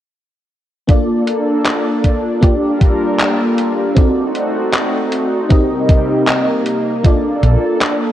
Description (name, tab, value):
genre	vaporwave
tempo	78 BPM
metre	4/4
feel	straight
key	Bb major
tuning	A4 = 440 Hz
part	FM electric piano with soft pad layer	accompaniment	0.9-8.1 s	Bb3 to Eb5	-16 LUFS	equal	ensemble chorus, cassette tape, analog delay
part	lush unison pad	sustained chords	0.9-8.1 s	C3 to Bb4	-21 LUFS	equal	chorus, vintage 12-bit sampler grit
part	detuned 8-bit digital drum machine	drums	0.9-8.0 s	handclaps, hi-hat	-20 LUFS	equal	gated reverb
part	electronic kick drum	drums	0.9-7.2 s	none	-11 LUFS	equal	none
part	mellow fretless electric bass	bass	7.4-7.5 s	Bb1	-10 LUFS	equal	none
room	light reverb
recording	cassette tape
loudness	-12 LUFS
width	side -12 dB against mid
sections	0.9-8.1 A section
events	none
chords	0.9 Bbmaj7; 2.4 Gm7; 4.0 D7b9; 5.5 Cm7; 7.0 Gm7 (rootless)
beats	| 0.89 1.66 2.43 3.20 | 3.97 4.74 5.51 6.28 | 7.04 7.82